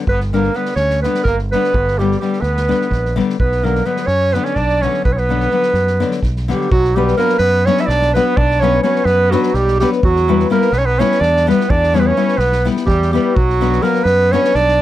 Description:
balkan folk, Balkan wedding band; 253 BPM (eighths); 7/8; straight; B harmonic minor; A4 = 439 Hz
nylon-string guitar; accompaniment; 0.0-14.5 s; D3 to B4; -17 LUFS; left 6 dB
clear clarinet; melody; 0.1-14.8 s; F#4 to E5; -17 LUFS; right 2 dB
warm trumpet; second line; 0.1-14.8 s; F#3 to E4; -22 LUFS; right 3 dB
fingered electric bass; bass; 0.1-14.8 s; G1 to F#2; -18 LUFS; equal
unplugged drum kit; percussion; 0.1-14.8 s; kick drum, snare drum; -23 LUFS; equal
little or no reverb; dry, close 1970s-style studio recording; -13 LUFS; side -13 dB against mid
0.0-6.7 A section; 6.7-14.8 B section
0.1 G; 3.4 Bm; 10.0 Em; 13.4 Bm

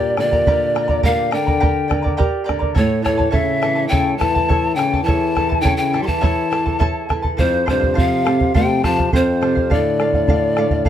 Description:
andean folk, Andean ensemble; 104 BPM; 4/4; straight; A4 = 440 Hz
breathy pan flute; melody; 0.0-10.9 s; C5 to C6; -19 LUFS; left 1 dB; plate reverb
warm French horn; second line; 0.0-10.9 s; F2 to G3; -22 LUFS; left 5 dB
charango; accompaniment; 0.0-10.9 s; E4 to Bb5; -25 LUFS; right 2 dB
flamenco guitar; accompaniment; 0.0-10.9 s; E2 to Bb4; -24 LUFS; right 5 dB
bombo; percussion; 0.2-10.9 s; -20 LUFS; right 1 dB
moderate studio reverb, RT60 0.5 s; dark, warm production; -15 LUFS; side -10 dB against mid
0.0-10.9 A section
0.0 Gm; 2.8 A; 7.4 F; 9.7 Dm

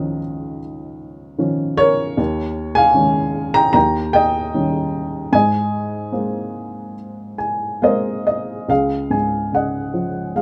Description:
classical, lyrical solo piano; 68-78 BPM; 4/4; rubato; Ab major; A4 = 442 Hz
dark upright piano; solo; 0.0-10.4 s; Db2 to Bb5; -19 LUFS; equal
light reverb; dark, warm production; -19 LUFS; mono
0.0-8.7 A section; 8.7-10.4 B section
upright piano fill 7.0-8.7
0.0 Dbadd9; 2.2 Eb7sus4; 3.8 Eb7; 5.3 Abadd9; 8.7 Dbadd9

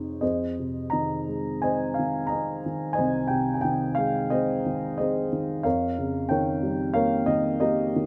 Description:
classical, lyrical solo piano; 84-94 BPM; 4/4; rubato; F minor; A4 = 437 Hz
dark upright piano; solo; 0.0-8.1 s; C2 to Bb5; -26 LUFS; equal
light reverb; close, detailed microphones; -26 LUFS; mono
0.0-8.1 A section
0.2 Fm7; 5.7 Eb7/F

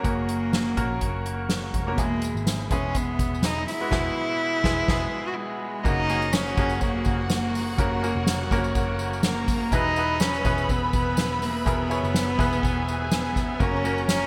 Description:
piano-driven pop; 124 BPM; 4/4; swing 56% on 16ths; F# major; A4 = 440 Hz
warm cello; melody; 0.0-14.3 s; G#3 to F#4; -30 LUFS; equal
bright grand piano; accompaniment; 0.0-14.3 s; B2 to C#5; -32 LUFS; equal
mellow tonewheel organ; sustained chords; 0.0-14.3 s; G#4 to E6; -42 LUFS; equal
vintage muted picked electric bass; bass; 0.0-14.3 s; E1 to A#1; -33 LUFS; equal
soft-mallet drum kit; drums; 0.0-14.2 s; crash cymbal, hi-hat, kick drum, ride cymbal, snare drum; -29 LUFS; equal; gated reverb
tambourine; percussion; 2.0-14.2 s; -43 LUFS; equal
warm studio violin section; second line; 5.8-14.3 s; F#4 to B5; -35 LUFS; equal
light reverb, small room ambience; bright 1980s-style digital production; -25 LUFS; mono
0.0-5.8 A section; 5.8-14.3 B section
band accent 3.9-5.8
0.0 F#; 2.0 E; 5.8 F#; 9.7 E; 13.6 F#

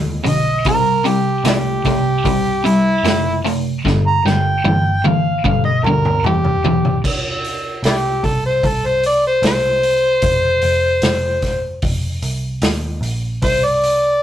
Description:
blues rock power trio and southern rock; 75 BPM; 4/4; straight; A4 = 438 Hz
crunchy overdriven guitar; riff; 0.0-7.0 s; F2 to A3; -17 LUFS; equal
vintage muted picked electric bass; bass; 0.0-14.2 s; F1 to Eb2; -23 LUFS; equal
overdriven harmonica; melody; 0.3-14.2 s; D4 to Bb5; -16 LUFS; equal
vintage drum kit; drums; 0.3-14.0 s; crash cymbal, hi-hat, kick drum, snare drum, toms; -21 LUFS; equal
moderate studio reverb, RT60 0.5 s; rough rehearsal-room recording; -14 LUFS; side -11 dB against mid
0.0-7.0 A section; 7.0-14.2 B section
drum fill 3.9-7.0; harmonica solo 7.0-14.2
0.0 F5; 0.7 C; 3.9 G7; 7.0 N.C.; 10.2 F5; 13.4 N.C.

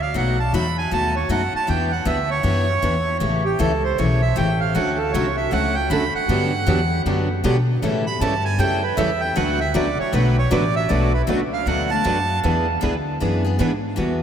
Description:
acoustic string swing (jazz manouche); 156 BPM; 4/4; swing 63% on 8ths; D major, B minor from 10.9 s; A4 = 439 Hz
accordion; second line; 0.0-12.4 s; G4 to B5; -23 LUFS; right 4 dB; analog delay
upright bass; bass; 0.0-14.2 s; A1 to B2; -22 LUFS; equal
picked steel-string acoustic guitar; accompaniment; 0.1-14.2 s; B2 to B4; -24 LUFS; left 4 dB
picked steel-string acoustic guitar; accompaniment; 4.8-14.2 s; B2 to B4; -26 LUFS; right 5 dB
wet cathedral reverb, RT60 7.0 s; dreamy mix soaked in reverb; -18 LUFS; side -8 dB against mid
0.0-10.9 A section; 10.9-14.2 A section
accordion solo 0.0-14.2
0.1 B7; 1.7 Em9; 3.2 A7; 4.8 Dmaj7; 6.3 Gmaj7; 7.8 A7; 9.4 D6; 10.9 Bm7; 12.4 E7

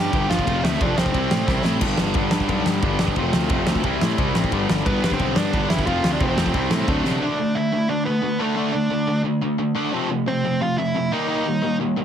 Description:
punk rock; 178 BPM; 4/4; straight; G mixolydian; A4 = 442 Hz
dark smooth lead guitar; melody; 0.0-1.6, 4.9-11.8 s; A3 to G5; -25 LUFS; right 2 dB; overdrive
cranked stack guitar; riff; 0.0-12.0 s; F2 to Eb4; -25 LUFS; left 10 dB; overdrive
overdriven electric guitar; riff; 0.0-12.0 s; F2 to E4; -26 LUFS; right 11 dB
thick fuzz guitar; riff; 0.0-7.2 s; F2 to E4; -28 LUFS; equal; distortion
fuzz picked electric bass; bass; 0.0-7.2 s; F1 to C3; -25 LUFS; equal; overdrive
loose indie drum kit; drums; 0.1-7.1 s; crash cymbal, kick drum, ride cymbal, snare drum; -23 LUFS; equal
light reverb; heavily compressed radio sound, multiband compression; -19 LUFS; side -9 dB against mid
0.0-7.2 A section; 7.2-12.0 B section
drum fill 1.5-1.8, 7.0
0.5 F; 1.1 C; 1.8 G; 3.2 F; 3.8 C; 4.5 G; 5.9 F; 6.5 C; 6.9 D; 7.2 D5; 9.9 F; 11.1 Eb

